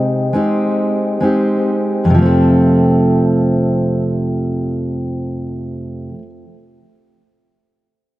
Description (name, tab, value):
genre	pop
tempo	66 BPM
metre	4/4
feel	straight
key	unclear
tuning	A4 = 440 Hz
part	fingerpicked steel-string acoustic guitar	solo	0.0-6.3 s	F2 to A4	-13 LUFS	equal	tape echo
room	light reverb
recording	dry, close 1970s-style studio recording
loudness	-13 LUFS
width	side -16 dB against mid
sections	0.0-2.1 A section; 2.1-5.8 B section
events	slowing down 0.0-2.1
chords	0.0 Abmaj7/C; 2.1 F